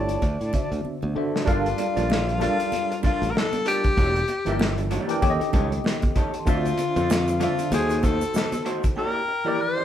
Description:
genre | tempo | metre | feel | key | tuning
lush 1970s-style soul | 96 BPM | 4/4 | swing 58% on 16ths | unclear | A4 = 440 Hz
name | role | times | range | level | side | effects
warm tenor saxophone | melody | 0.0-9.8 s | D4 to C5 | -26 LUFS | left 3 dB | none
tine electric piano | accompaniment | 0.0-9.8 s | D3 to A5 | -28 LUFS | left 1 dB | overdrive, fast stereo tremolo
modern bright fingered electric bass | bass | 0.0-8.2 s | E1 to D3 | -26 LUFS | equal | none
warm soul drum kit | drums | 0.1-9.0 s | hi-hat, kick drum, snare drum | -25 LUFS | equal | none
congas | percussion | 0.2-8.6 s | none | -35 LUFS | right 4 dB | none
electric guitar through a small old amp | riff | 1.5-9.8 s | A3 to D5 | -32 LUFS | right 3 dB | none
vibraphone with medium hard mallets | texture | 1.8-9.6 s | D5 to C6 | -36 LUFS | right 3 dB | none
egg shaker | percussion | 6.5-9.0 s | none | -44 LUFS | right 6 dB | none
room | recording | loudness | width
moderate studio reverb, RT60 0.9 s | band playing live in one room | -21 LUFS | side -10 dB against mid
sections
0.0-1.5 A section; 1.5-9.8 B section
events
drum fill 0.9-1.5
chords
0.2 D7; 1.5 Gm7; 4.0 Em7b5; 5.2 Eb7#11; 6.5 Dm7; 7.7 D#dim7; 9.0 Em7b5

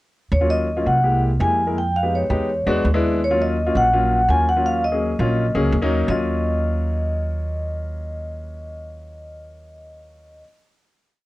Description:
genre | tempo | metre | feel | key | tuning
Afro-Cuban jazz | 167 BPM | 4/4 | straight | Eb minor | A4 = 441 Hz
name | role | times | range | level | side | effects
vibraphone with soft mallets | melody | 0.3-10.4 s | Db5 to Ab5 | -22 LUFS | equal | none
upright bass | bass | 0.3-10.4 s | Bb1 to F2 | -23 LUFS | right 1 dB | none
warm baby grand piano | accompaniment | 0.4-10.4 s | Gb3 to Bb4 | -23 LUFS | left 2 dB | none
room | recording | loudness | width
light reverb | worn, warbling old tape, cassette tape, warbly pitch drift | -18 LUFS | side -18 dB against mid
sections
0.3-6.1 A section; 6.1-9.0 final chord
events
none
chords
0.3 Ebm9; 1.0 C7b13; 1.8 Fm7b5; 2.5 E9; 3.2 Ebm9

